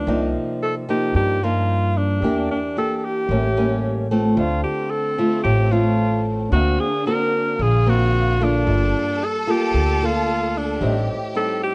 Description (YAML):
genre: bossa nova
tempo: 112 BPM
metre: 4/4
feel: straight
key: unclear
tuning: A4 = 436 Hz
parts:
  - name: bright alto saxophone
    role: melody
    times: 0.0-11.7 s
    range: D4 to A#4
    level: -25 LUFS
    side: equal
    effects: none
  - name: nylon-string guitar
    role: accompaniment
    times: 0.0-11.7 s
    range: G2 to A4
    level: -25 LUFS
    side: equal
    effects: none
  - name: warm baby grand piano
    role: accompaniment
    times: 0.0-11.7 s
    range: D4 to E#5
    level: -35 LUFS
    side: equal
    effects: none
  - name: upright bass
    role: bass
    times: 0.0-11.1 s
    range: G1 to G2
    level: -24 LUFS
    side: equal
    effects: none
  - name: warm symphonic violin section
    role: second line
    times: 4.4-11.7 s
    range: C4 to A4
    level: -33 LUFS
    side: equal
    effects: none
room: light reverb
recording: nothing above 10.5 kHz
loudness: -20 LUFS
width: mono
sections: 0.0-11.7 A section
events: none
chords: 0.1 Cm11; 2.2 Em7b5; 3.3 A7b9; 4.4 Dm7; 6.5 D7alt; 8.7 Gm9; 10.8 Am7b5